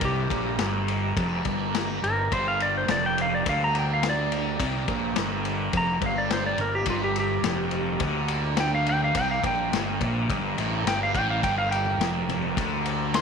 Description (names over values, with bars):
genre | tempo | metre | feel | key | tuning
psychedelic rock | 105 BPM | 4/4 | straight | G minor | A4 = 440 Hz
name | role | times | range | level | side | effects
clean lap steel guitar | melody | 0.0-13.2 s | F4 to C6 | -27 LUFS | equal | slapback echo
combo organ | sustained chords | 0.0-13.2 s | Bb3 to Bb4 | -34 LUFS | right 10 dB | lush chorus
fuzz guitar | riff | 0.0-13.2 s | F2 to D3 | -28 LUFS | equal | distortion, phaser
fuzz fingered electric bass | bass | 0.0-13.2 s | F1 to D2 | -32 LUFS | right 1 dB | overdrive
tanpura | drone | 0.0-13.2 s | G2 to G3 | -38 LUFS | right 2 dB | none
vintage drum kit | drums | 0.0-13.2 s | kick drum, ride cymbal, snare drum | -30 LUFS | left 7 dB | none
congas | percussion | 11.9-12.6 s | none | -41 LUFS | left 11 dB | none
room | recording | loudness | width
moderate echo chamber reverb, RT60 1.8 s, small room ambience | 1960s-style stereo with parts hard left and right | -23 LUFS | side -6 dB against mid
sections
0.0-13.2 A section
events
electric slide guitar solo 0.0-13.2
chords
0.0 Gm